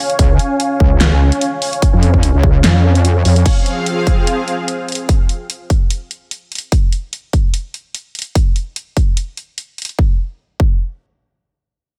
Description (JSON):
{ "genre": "heavy wobble dubstep", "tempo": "147 BPM", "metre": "4/4", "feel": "swing 54% on 16ths, half-time", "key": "F minor", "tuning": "A4 = 441 Hz", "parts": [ { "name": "supersaw pad", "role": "sustained chords", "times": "0.0-5.1 s", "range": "F3 to Ab5", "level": "-21 LUFS", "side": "equal", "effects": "analog chorus, sidechain pumping, low-pass filter" }, { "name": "big-room dance drum kit", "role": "drums", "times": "0.1-10.0 s", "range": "crash cymbal, handclaps, hi-hat, snare drum", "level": "-23 LUFS", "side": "equal", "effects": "none" }, { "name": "wobble bass", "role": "bass", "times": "0.2-3.4 s", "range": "Db2 to F2", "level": "-13 LUFS", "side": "equal", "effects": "chorus, overdrive" }, { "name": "electronic kick drum", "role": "drums", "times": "0.2-10.7 s", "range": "none", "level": "-15 LUFS", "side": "equal", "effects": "none" } ], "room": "light reverb", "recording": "none", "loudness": "-15 LUFS", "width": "mono", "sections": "0.0-3.5 A section; 3.5-10.0 B section; 10.0-12.0 C section", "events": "drop 0.0-3.5; kick drops out 3.0-3.5", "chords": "0.0 Db; 3.5 Fm; 5.1 N.C.", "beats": "| 0.19 0.60 1.01 1.41 | 1.82 2.23 2.64 3.05 | 3.46 3.86 4.27 4.68 | 5.09 5.50 5.90 6.31 | 6.72 7.13 7.54 7.95 | 8.35 8.76 9.17 9.58 | 9.99 10.39" }